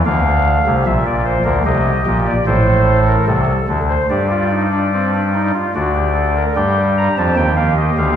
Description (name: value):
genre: classical, baroque-style 3-part fugue for pipe organ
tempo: 74 BPM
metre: 3/4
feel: straight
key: G minor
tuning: A4 = 440 Hz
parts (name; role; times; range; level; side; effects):
- chamber organ, soft reed; solo; 0.0-8.2 s; A1 to Bb5; -13 LUFS; equal; none
room: wet recital hall reverb, RT60 1.6 s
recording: heard from further back in the room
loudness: -13 LUFS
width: side -9 dB against mid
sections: 0.0-6.6 A section; 6.6-8.2 B section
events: none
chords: 0.0 Dm; 0.9 Bbadd9; 1.7 Am7b5; 4.1 Dsus4/G; 5.7 D; 6.6 G5